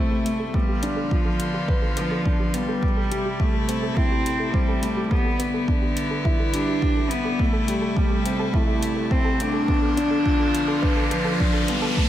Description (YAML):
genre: piano and strings electronica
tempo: 105 BPM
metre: 4/4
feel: straight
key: A minor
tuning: A4 = 440 Hz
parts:
  - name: warm cello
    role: melody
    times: 0.0-12.1 s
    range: F3 to D4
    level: -25 LUFS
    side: equal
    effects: diffuse ambient delay
  - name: rich string quartet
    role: sustained chords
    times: 0.0-12.1 s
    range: C3 to F4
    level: -30 LUFS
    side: left 1 dB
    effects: sidechain pumping
  - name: felt-muted upright piano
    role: riff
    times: 0.0-12.0 s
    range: G3 to B4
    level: -28 LUFS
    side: left 2 dB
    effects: diffuse ambient delay
  - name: round analog bass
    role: bass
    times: 0.0-12.1 s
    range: none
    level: barely audible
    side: none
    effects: none
  - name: soft round pluck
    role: arpeggios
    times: 0.1-11.9 s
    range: G4 to A4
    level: -36 LUFS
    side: right 3 dB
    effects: chorus, sidechain pumping, diffuse ambient delay
  - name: electronic hi-hat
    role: drums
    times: 0.3-11.8 s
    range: none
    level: -34 LUFS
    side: left 1 dB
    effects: overdrive, high-pass filter on hats, studio reverb
  - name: electronic kick drum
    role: drums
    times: 0.5-12.1 s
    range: none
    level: -24 LUFS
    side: equal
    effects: overdrive, studio reverb
  - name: riser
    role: sound effects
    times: 8.6-12.1 s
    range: none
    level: -30 LUFS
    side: equal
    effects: none
room: moderate plate reverb, RT60 2.1 s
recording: dreamy mix soaked in reverb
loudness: -20 LUFS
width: side -12 dB against mid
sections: 0.0-12.1 A section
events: build-up 0.0-12.1; filter sweep on synth arpeggio sound 0.0-12.1; riser 8.6-12.1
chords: 0.0 Am7; 0.5 Bdim; 2.8 Am7; 5.1 Em7; 7.4 Am7; 9.7 Bdim